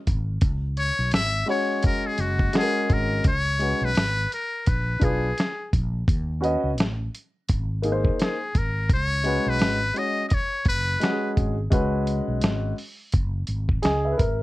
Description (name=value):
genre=hip hop, jazz-hop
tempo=85 BPM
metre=4/4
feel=swing 60% on 16ths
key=unclear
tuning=A4 = 440 Hz
part: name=mellow fretless electric bass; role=bass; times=0.1-14.4 s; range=F#1 to D#2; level=-26 LUFS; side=equal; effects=none
part: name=dusty soul sampler-style drum kit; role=drums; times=0.1-14.4 s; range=hi-hat, kick drum, snare drum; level=-23 LUFS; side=equal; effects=none
part: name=trumpet with metal mute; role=melody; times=0.8-11.3 s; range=F#4 to E5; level=-26 LUFS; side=left 2 dB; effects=none
part: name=dark upright piano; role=accompaniment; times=1.5-14.4 s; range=G#3 to G#5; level=-25 LUFS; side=left 1 dB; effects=none
room=little or no reverb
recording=cassette tape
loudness=-21 LUFS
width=side -18 dB against mid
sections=0.0-3.2 A section; 3.2-14.4 B section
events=muted trumpet solo 0.0-3.2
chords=0.0 C#5; 4.7 A#7b9; 6.1 D#m7b5; 7.5 G#; 8.9 C#5